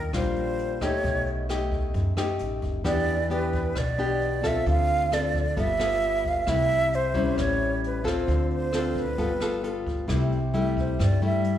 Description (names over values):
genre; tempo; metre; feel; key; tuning
bossa nova; 133 BPM; 4/4; straight; C major; A4 = 440 Hz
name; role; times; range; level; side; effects
breathy concert flute; melody; 0.0-11.6 s; Bb4 to F5; -27 LUFS; right 2 dB; none
nylon-string guitar; accompaniment; 0.0-11.6 s; F#2 to A4; -27 LUFS; left 2 dB; none
upright bass; bass; 0.0-11.6 s; F#1 to G2; -29 LUFS; equal; none
jazz brush drum kit; drums; 0.1-11.5 s; hi-hat, kick drum, rim click; -32 LUFS; equal; none
room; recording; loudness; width
moderate scoring stage reverb, RT60 1.7 s; recorded in a church or concert hall; -23 LUFS; side -11 dB against mid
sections
0.0-10.1 A section; 10.1-11.6 B section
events
flute solo 10.1-11.6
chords
0.0 Ebmaj9; 1.0 B7b13; 2.9 Em7; 4.7 Dm7; 5.6 G9; 6.5 C6; 7.4 A7; 8.3 Dm7; 9.2 G9; 10.1 C6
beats
0.13 0.59 | 1.04 1.49 1.95 2.40 | 2.85 3.30 3.75 4.21 | 4.66 5.11 5.57 6.02 | 6.47 6.92 7.38 7.83 | 8.28 8.73 9.18 9.64 | 10.09 10.54 10.99 11.45